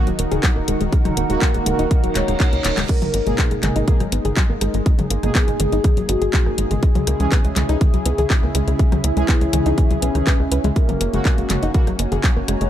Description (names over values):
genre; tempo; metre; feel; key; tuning
melodic techno; 122 BPM; 4/4; straight; G# minor; A4 = 439 Hz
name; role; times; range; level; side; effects
warm analog pad; sustained chords; 0.0-12.7 s; C#3 to A#4; -29 LUFS; left 1 dB; chorus, sidechain pumping
soft round pluck; arpeggios; 0.0-12.7 s; D#3 to B4; -26 LUFS; left 2 dB; chorus, sidechain pumping, ping-pong delay
analog synth brass; stabs; 0.0-11.9 s; B2 to G#4; -28 LUFS; right 2 dB; chorus, vintage 12-bit sampler grit, sidechain pumping, ping-pong delay
granular cloud pad; texture; 0.1-12.7 s; C#4 to A#5; -29 LUFS; right 2 dB; built-in reverb, sidechain pumping
tight sequencer bass; bass; 0.1-12.7 s; D#1 to C#2; -22 LUFS; equal; sidechain pumping
house drum kit; drums; 0.1-12.7 s; crash cymbal, handclaps, hi-hat, rim click, toms; -25 LUFS; left 1 dB; none
electronic kick drum; drums; 0.4-12.3 s; none; -17 LUFS; equal; none
soft octave-layered synth lead; melody; 1.2-11.4 s; C#4 to C#5; -27 LUFS; left 1 dB; chorus, phaser, vintage 12-bit sampler grit, sidechain pumping, ping-pong delay
reverse cymbal; sound effects; 2.1-2.9 s; none; -33 LUFS; right 6 dB; none
room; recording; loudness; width
digital ambience; none; -16 LUFS; side -11 dB against mid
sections
0.0-12.7 A section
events
reverse cymbal 2.1-2.9; drum fill 2.6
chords
0.0 D#m; 2.9 G#madd9; 6.8 C#m; 10.8 F#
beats
0.43 | 0.93 1.42 1.91 2.40 | 2.89 3.38 3.88 4.37 | 4.86 5.35 5.84 6.33 | 6.83 7.32 7.81 8.30 | 8.79 9.29 9.78 10.27 | 10.76 11.25 11.74 12.24